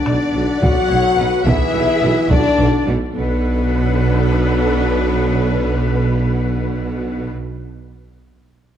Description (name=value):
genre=cinematic, epic orchestral film score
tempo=71 BPM (dotted quarters)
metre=6/8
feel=straight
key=B minor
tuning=A4 = 439 Hz
part: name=warm symphonic violin section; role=melody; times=0.0-7.3 s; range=B4 to F#5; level=-29 LUFS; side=left 4 dB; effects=none
part: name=bright small flute group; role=second line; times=0.0-7.3 s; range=B4 to F#5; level=-26 LUFS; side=left 4 dB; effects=none
part: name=warm symphonic violin section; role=second line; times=0.0-7.3 s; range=B4 to F#5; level=-29 LUFS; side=left 3 dB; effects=none
part: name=dark trombone section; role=sustained chords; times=0.0-7.3 s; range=D3 to F#3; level=-26 LUFS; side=right 3 dB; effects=none
part: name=mellow French horn section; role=sustained chords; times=0.0-7.3 s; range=B3 to F#4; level=-21 LUFS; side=left 5 dB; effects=none
part: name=warm woodwind section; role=sustained chords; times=0.0-7.3 s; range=A3 to F#5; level=-32 LUFS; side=right 1 dB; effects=none
part: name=clear symphonic cello section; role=bass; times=0.1-7.3 s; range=B2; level=-23 LUFS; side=right 2 dB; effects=none
part: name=mellow tuba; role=bass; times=0.1-7.3 s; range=B1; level=-24 LUFS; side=right 3 dB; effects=none
part: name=warm symphonic double bass section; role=bass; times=0.1-7.3 s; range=B1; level=-23 LUFS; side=right 2 dB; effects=none
part: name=taiko ensemble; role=drums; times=0.1-2.8 s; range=none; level=-20 LUFS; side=equal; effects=none
part: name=warm symphonic viola section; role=accompaniment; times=0.6-7.3 s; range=D4 to D5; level=-27 LUFS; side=right 1 dB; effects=none
room=moderate scoring stage reverb, RT60 2.0 s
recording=dark, warm production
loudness=-14 LUFS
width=side -10 dB against mid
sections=0.0-3.1 A section; 3.1-6.5 B section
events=none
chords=0.0 Bm7